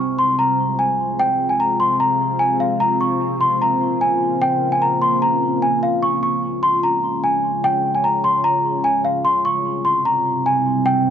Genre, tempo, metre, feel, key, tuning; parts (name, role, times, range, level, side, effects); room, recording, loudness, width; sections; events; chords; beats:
hip hop; 149 BPM; 4/4; half-time; F harmonic minor; A4 = 439 Hz
celesta; melody; 0.0-11.1 s; F5 to Db6; -17 LUFS; equal; low-pass filter, tape echo
deep dark ambient pad; sustained chords; 0.0-11.1 s; C3 to Db5; -22 LUFS; equal; chorus, built-in reverb
moderate scoring stage reverb, RT60 1.6 s, small room ambience; dark, warm production; -16 LUFS; side -8 dB against mid
0.0-11.1 A section
0.0 Fm; 2.8 Bbmadd9; 6.0 Db; 9.2 C
0.39 0.79 | 1.19 1.59 2.00 2.40 | 2.80 3.21 3.61 4.01 | 4.41 4.82 5.22 5.62 | 6.03 6.43 6.83 7.23 | 7.64 8.04 8.44 8.84 | 9.25 9.65 10.05 10.46 | 10.86